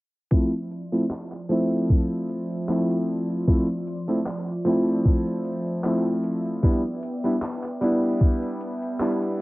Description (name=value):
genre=vaporwave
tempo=76 BPM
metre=4/4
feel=swing 54% on 16ths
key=unclear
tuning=A4 = 440 Hz
part: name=bright electric grand piano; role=accompaniment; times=0.3-9.4 s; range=F3 to E4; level=-24 LUFS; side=equal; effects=wide subtle chorus, vintage 12-bit sampler grit, cassette tape, analog delay
part: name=lush unison pad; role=sustained chords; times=0.3-9.4 s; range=F3 to C6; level=-31 LUFS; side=equal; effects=chorus, cassette tape
part: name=electronic kick drum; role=drums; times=0.3-8.4 s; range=none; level=-20 LUFS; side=equal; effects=cassette tape
part: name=gated 80s digital drum machine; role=drums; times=0.3-9.4 s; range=handclaps, hi-hat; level=-37 LUFS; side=equal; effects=gated reverb, cassette tape
room=moderate booth ambience, RT60 0.2 s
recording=home recording on cassette, low-pass filter, nothing above 7.6 kHz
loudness=-22 LUFS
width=side -20 dB against mid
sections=0.3-9.4 A section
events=filter sweep on analog synth pad 0.3-9.4; filter sweep 0.3-9.4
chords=0.3 Dm9; 6.6 G6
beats=| 0.32 1.11 1.90 2.69 | 3.48 4.27 5.06 5.85 | 6.64 7.43 8.21 9.01